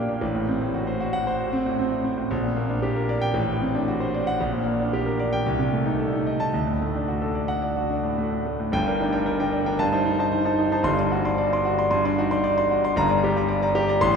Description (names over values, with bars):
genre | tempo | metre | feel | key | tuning
classical, virtuoso piano study | 114 BPM | 4/4 | rubato | G minor | A4 = 441 Hz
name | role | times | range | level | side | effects
clear concert grand piano | solo | 0.0-14.2 s | G1 to C6 | -21 LUFS | equal | none
room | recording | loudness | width
wet cathedral reverb, RT60 6.1 s | heard from further back in the room | -21 LUFS | side -6 dB against mid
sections
0.0-8.7 A section; 8.7-14.2 B section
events
none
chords
0.2 F#dim/A; 2.3 Gm/Bb; 3.3 D7/A; 4.4 Gm/Bb; 5.5 Adim/C; 6.5 D; 8.7 Gm; 9.8 Adim/G; 10.9 D7/G; 13.0 Gm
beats
| 0.21 0.73 1.25 1.78 | 2.30 2.82 3.34 3.87 | 4.39 4.92 5.45 5.99 | 6.53 7.08 7.62 8.18 | 8.73 9.26 9.79 10.33 | 10.86 11.39 11.92 12.45 | 12.97 13.49 14.02